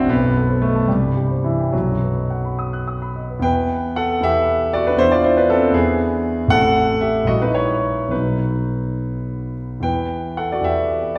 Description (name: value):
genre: classical, romantic character piece for solo piano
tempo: 68-81 BPM (dotted quarters)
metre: 6/8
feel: rubato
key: E minor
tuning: A4 = 441 Hz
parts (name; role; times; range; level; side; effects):
- warm concert grand piano; solo; 0.0-11.2 s; A1 to F#6; -19 LUFS; equal; none
room: wet scoring stage reverb, RT60 1.6 s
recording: heard from further back in the room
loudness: -19 LUFS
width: mono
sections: 0.0-3.4 A section; 3.4-11.2 B section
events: none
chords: 0.1 B7b9; 0.9 C; 1.7 B; 3.4 Em; 5.0 E7; 6.5 Am; 7.3 A#dim7; 8.1 B; 9.8 Em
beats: | 0.11 0.89 | 1.74 2.59 | 3.43 4.24 | 5.00 5.75 | 6.51 7.28 | 8.12 8.98 | 9.84 10.64